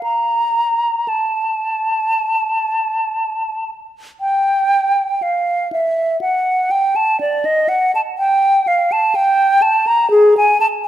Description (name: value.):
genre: classical, baroque-style fantasia for unaccompanied flute.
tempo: 56-63 BPM.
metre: 4/4.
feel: rubato.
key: unclear.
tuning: A4 = 440 Hz.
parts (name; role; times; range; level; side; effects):
hollow concert flute; solo; 0.0-10.9 s; G#4 to Bb5; -14 LUFS; equal; none.
room: moderate recital hall reverb, RT60 1.7 s.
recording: none.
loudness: -14 LUFS.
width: side -12 dB against mid.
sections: 0.0-4.2 A section; 4.2-10.9 A section.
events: none.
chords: none.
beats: | 0.03 1.08 2.13 3.17 | 4.20 5.21 6.20 7.19 | 8.18 9.14 10.11.